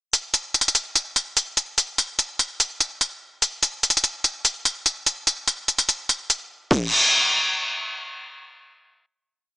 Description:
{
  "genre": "hip hop",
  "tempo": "146 BPM",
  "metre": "4/4",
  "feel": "half-time",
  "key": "none",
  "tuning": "none",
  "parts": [
    { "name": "trap drum kit", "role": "drums", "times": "0.1-6.8 s", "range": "crash cymbal, hi-hat, kick drum", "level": "-19 LUFS", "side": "equal", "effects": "none" }
  ],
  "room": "light reverb",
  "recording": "blown-out, overdriven recording, overdrive, small speaker sound",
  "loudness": "-19 LUFS",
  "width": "side -20 dB against mid",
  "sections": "0.1-6.7 breakdown; 6.7-9.6 final hit",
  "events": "kick muted 5.1-6.7",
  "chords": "none"
}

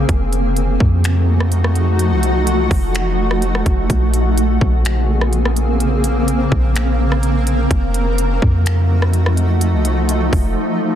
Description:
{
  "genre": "hip hop, atmospheric cloud-rap",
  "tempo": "126 BPM",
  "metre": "4/4",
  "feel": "half-time",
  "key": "unclear",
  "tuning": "A4 = 440 Hz",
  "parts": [
    { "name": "shimmering ambient pad", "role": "sustained chords", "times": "0.0-11.0 s", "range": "Db3 to Bb4", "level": "-18 LUFS", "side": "equal", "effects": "chorus, built-in reverb, sidechain pumping" },
    { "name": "clean 808-style bass", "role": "bass", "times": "0.0-10.6 s", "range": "F1 to F2", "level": "-16 LUFS", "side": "equal", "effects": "none" },
    { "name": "trap drum kit", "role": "drums", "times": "0.1-10.4 s", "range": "finger snaps, hi-hat, kick drum, rim click", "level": "-19 LUFS", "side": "equal", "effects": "soft clipping on snare" }
  ],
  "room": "little or no reverb",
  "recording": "dense, heavily limited modern master",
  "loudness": "-14 LUFS",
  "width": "side -10 dB against mid",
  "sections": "0.0-11.0 A section",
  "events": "drums muted 10.6-11.0",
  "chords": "0.1 F7b9; 3.9 Bbm9; 7.7 F7b9"
}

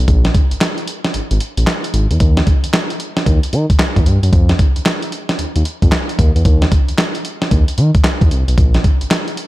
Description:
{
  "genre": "R&B, new jack swing",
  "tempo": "113 BPM",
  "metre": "4/4",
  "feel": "swing 64% on 16ths",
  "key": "unclear",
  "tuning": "A4 = 441 Hz",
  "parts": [
    { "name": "smooth gliding synth bass", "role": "bass", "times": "0.0-9.1 s", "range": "Ab1 to Eb3", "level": "-14 LUFS", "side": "equal", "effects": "none" },
    { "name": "dusty soul sampler-style drum kit", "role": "drums", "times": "0.1-9.5 s", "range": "handclaps, hi-hat, kick drum, snare drum", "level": "-14 LUFS", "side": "equal", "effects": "none" }
  ],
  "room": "little or no reverb",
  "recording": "dark, warm production",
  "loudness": "-12 LUFS",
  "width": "side -17 dB against mid",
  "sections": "0.0-9.5 A section",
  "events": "break 1.1-2.2",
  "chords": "none"
}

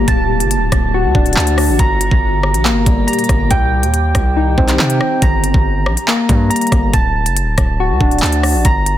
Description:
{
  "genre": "hip hop, drill",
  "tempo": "140 BPM",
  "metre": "4/4",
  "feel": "half-time",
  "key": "G harmonic minor",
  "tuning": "A4 = 440 Hz",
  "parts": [
    { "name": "granular cloud pad", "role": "sustained chords", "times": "0.0-5.2 s", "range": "Bb2 to G4", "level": "-23 LUFS", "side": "left 1 dB", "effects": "built-in reverb" },
    { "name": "soft electric-piano-like synth keys", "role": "arpeggios", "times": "0.0-9.0 s", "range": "G3 to Bb5", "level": "-17 LUFS", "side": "equal", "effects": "chorus, digital delay" },
    { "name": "distorted 808-style bass", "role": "bass", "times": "0.0-9.0 s", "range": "D1 to C3", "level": "-16 LUFS", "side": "equal", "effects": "distortion" },
    { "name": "drill drum kit", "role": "drums", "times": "0.1-9.0 s", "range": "handclaps, hi-hat, kick drum, rim click", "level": "-15 LUFS", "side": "equal", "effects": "none" }
  ],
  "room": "little or no reverb",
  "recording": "dense, heavily limited modern master",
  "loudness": "-12 LUFS",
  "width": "side -12 dB against mid",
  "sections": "0.0-5.2 A section; 5.2-9.0 A section",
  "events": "none",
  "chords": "0.1 D; 1.8 Gm; 3.5 Cm; 5.2 Gm; 6.9 D"
}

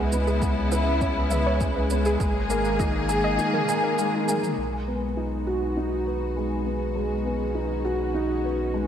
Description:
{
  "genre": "piano and strings electronica",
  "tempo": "101 BPM",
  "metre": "4/4",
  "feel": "straight",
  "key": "B major",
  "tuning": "A4 = 439 Hz",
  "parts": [
    { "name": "rich studio string section", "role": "sustained chords", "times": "0.0-8.9 s", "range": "C#3 to G#4", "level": "-29 LUFS", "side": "left 2 dB", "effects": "none" },
    { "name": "warbly dusty pluck", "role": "arpeggios", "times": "0.0-4.4 s", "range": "G#4 to G#5", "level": "-31 LUFS", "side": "right 2 dB", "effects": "chorus, sidechain pumping, diffuse ambient delay" },
    { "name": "warm sub bass", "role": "bass", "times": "0.0-8.9 s", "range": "G#1 to C#2", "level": "-28 LUFS", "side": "equal", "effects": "sidechain pumping" },
    { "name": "dark upright piano", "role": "riff", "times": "0.1-8.9 s", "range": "G#3 to G#4", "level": "-26 LUFS", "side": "equal", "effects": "analog chorus, diffuse ambient delay" },
    { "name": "electronic shaker and toms", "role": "drums", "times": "0.1-4.6 s", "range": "none", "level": "-36 LUFS", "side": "right 1 dB", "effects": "overdrive, low-pass filter on perc, low-pass filter on toms" },
    { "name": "electronic kick drum", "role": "drums", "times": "0.4-2.9 s", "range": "none", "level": "-28 LUFS", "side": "equal", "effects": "overdrive" }
  ],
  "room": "wet lush hall reverb, RT60 1.6 s, digital ambience",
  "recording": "dreamy mix soaked in reverb",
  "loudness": "-22 LUFS",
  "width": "side -9 dB against mid",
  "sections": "0.0-4.6 A section; 4.6-8.9 B section",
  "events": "drum fill 4.1-4.6",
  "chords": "0.0 C#m7; 2.2 G#sus2; 4.6 B6"
}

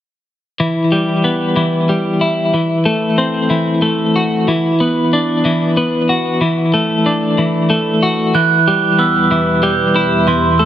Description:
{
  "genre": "post-rock",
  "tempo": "62 BPM (dotted quarters)",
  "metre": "6/8",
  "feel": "straight",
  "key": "E minor",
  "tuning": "A4 = 439 Hz",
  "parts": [
    { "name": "twelve-string electric guitar", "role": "arpeggios", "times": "0.6-10.7 s", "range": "E3 to F#4", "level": "-13 LUFS", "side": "left 1 dB", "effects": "tremolo, tape echo" },
    { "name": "deep dark ambient pad", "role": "sustained chords", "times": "9.1-10.7 s", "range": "E2 to B4", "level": "-20 LUFS", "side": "right 2 dB", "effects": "chorus, built-in reverb, tremolo, phaser" },
    { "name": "glockenspiel with soft plastic mallets", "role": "arpeggios", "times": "8.3-10.7 s", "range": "C6 to G6", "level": "-14 LUFS", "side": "right 8 dB", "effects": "tape echo" }
  ],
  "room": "moderate large studio reverb, RT60 1.4 s, small room ambience",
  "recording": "none",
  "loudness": "-12 LUFS",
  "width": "side -11 dB against mid",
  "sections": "0.6-10.7 A section",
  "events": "none",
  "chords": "0.6 Em; 2.5 F#dim/E; 4.5 Bm/E; 6.4 Dadd9/E; 8.3 Em"
}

